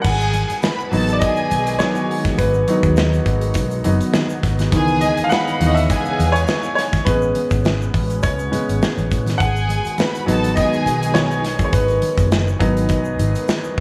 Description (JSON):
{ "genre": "lush 1970s-style soul", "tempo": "103 BPM", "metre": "4/4", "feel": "swing 54% on 16ths", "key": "unclear", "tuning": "A4 = 441 Hz", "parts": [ { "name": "rich studio violin section", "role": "second line", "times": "0.0-11.4 s", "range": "F#4 to B5", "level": "-26 LUFS", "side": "equal", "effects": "tape echo" }, { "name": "bright concert grand piano", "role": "accompaniment", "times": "0.0-13.8 s", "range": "D#3 to F#5", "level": "-22 LUFS", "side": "equal", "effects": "none" }, { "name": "vintage muted fingered electric bass", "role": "bass", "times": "0.0-13.8 s", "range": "F#1 to A2", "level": "-22 LUFS", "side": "equal", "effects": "none" }, { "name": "modern studio drum kit", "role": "drums", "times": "0.0-13.8 s", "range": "crash cymbal, hi-hat, kick drum, snare drum", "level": "-25 LUFS", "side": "equal", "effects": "none" }, { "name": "soft string machine", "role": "sustained chords", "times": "0.5-13.8 s", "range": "B2 to G#4", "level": "-30 LUFS", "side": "equal", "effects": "phaser, ensemble chorus" }, { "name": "congas", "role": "percussion", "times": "0.1-13.6 s", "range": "none", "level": "-32 LUFS", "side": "equal", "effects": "none" }, { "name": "egg shaker", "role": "percussion", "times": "0.1-13.8 s", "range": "none", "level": "-47 LUFS", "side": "equal", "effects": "none" } ], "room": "light reverb, small room reverb", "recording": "small room ambience", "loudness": "-18 LUFS", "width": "mono", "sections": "0.0-13.8 A section", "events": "grand piano solo 0.0-13.8", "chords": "0.0 G#m7; 4.7 C#m9; 7.1 Amaj9; 9.4 G#m7" }